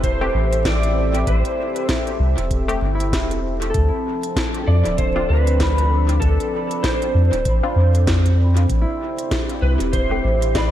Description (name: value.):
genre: ambient dub.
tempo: 97 BPM.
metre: 4/4.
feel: swing 59% on 16ths.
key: D dorian.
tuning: A4 = 440 Hz.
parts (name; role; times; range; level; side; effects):
electric slide guitar; melody; 0.0-10.7 s; A4 to D5; -25 LUFS; right 1 dB; ensemble chorus, dub echo.
warm analog pad; sustained chords; 0.0-10.7 s; F3 to G5; -26 LUFS; equal; chorus.
Celtic harp; arpeggios; 0.0-10.7 s; E4 to B5; -29 LUFS; left 1 dB; dub echo.
soft dub sub bass; bass; 0.0-10.7 s; D1 to F2; -18 LUFS; equal; none.
electronic kick drum; drums; 0.0-10.7 s; none; -25 LUFS; equal; none.
organic electronic drum kit; drums; 0.0-10.7 s; hi-hat, snare drum; -27 LUFS; equal; dub echo.
filtered dub chord stab; stabs; 0.2-10.2 s; A3 to G4; -31 LUFS; left 3 dB; chorus, dub echo.
room: light reverb, digital ambience.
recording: vinyl crackle.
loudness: -16 LUFS.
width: side -12 dB against mid.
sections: 0.0-10.7 A section.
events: none.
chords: 0.0 Am7; 3.7 Dm7; 8.7 Am7.